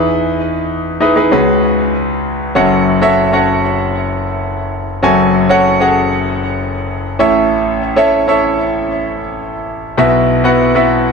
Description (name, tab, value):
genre	pop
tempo	97 BPM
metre	4/4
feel	straight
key	F# dorian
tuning	A4 = 442 Hz
part	clear concert grand piano	solo	0.0-11.1 s	F#1 to G#5	-11 LUFS	equal	digital delay
room	moderate plate reverb, RT60 2.4 s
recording	dark, warm production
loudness	-11 LUFS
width	side -4 dB against mid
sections	0.0-2.6 A section; 2.6-11.1 B section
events	none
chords	0.0 Emaj7; 1.3 C#7sus4; 2.6 F#m; 7.2 A; 10.0 Bsus4